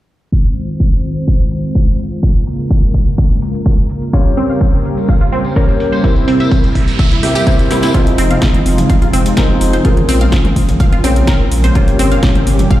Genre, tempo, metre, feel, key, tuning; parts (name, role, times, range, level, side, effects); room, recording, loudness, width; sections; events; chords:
progressive house; 126 BPM; 4/4; straight; F minor; A4 = 440 Hz
warm analog pad; sustained chords; 0.3-12.8 s; Bb2 to C5; -19 LUFS; right 1 dB; chorus, sidechain pumping
deep house drum kit; drums; 0.3-12.8 s; hi-hat, snare drum; -23 LUFS; equal; overdrive, low-pass filter on hats, low-pass filter on snare, low-pass filter on room
electronic kick drum; drums; 0.3-12.8 s; -12 LUFS; equal
wide unison pluck; arpeggios; 4.1-12.8 s; C4 to F5; -20 LUFS; right 2 dB; phaser, sidechain pumping, dub echo
felt-muted upright piano; stabs; 4.1-12.8 s; Bb3 to E5; -18 LUFS; left 2 dB; sidechain pumping, low-pass filter, dub echo
tambourine; percussion; 4.1-7.9 s; -31 LUFS; left 3 dB
noise sweep; sound effects; 6.5-7.9 s; -27 LUFS; right 5 dB
round analog bass; bass; 8.2-12.6 s; F1 to Bb1; -14 LUFS; equal; sidechain pumping
electronic congas and toms; percussion; 8.3-12.7 s; -22 LUFS; left 2 dB; sidechain pumping on perc, sidechain pumping on toms
digital ambience; played on a big sound system in a bare room, large studio reverb, low-pass filter; -10 LUFS; side -14 dB against mid
0.3-7.9 A section; 7.9-12.8 B section
filter sweep on drum 0.3-7.9; filter sweep on analog synth pad 0.3-7.9; filter sweep 0.3-7.9; noise sweep 6.5-7.9; drum fill 7.7; filter sweep on felt piano 7.9-12.8
0.3 Fm7; 2.2 Bbm7; 4.1 Gdim; 6.0 C7; 7.9 Fm7; 9.8 Bbm7; 11.8 Gdim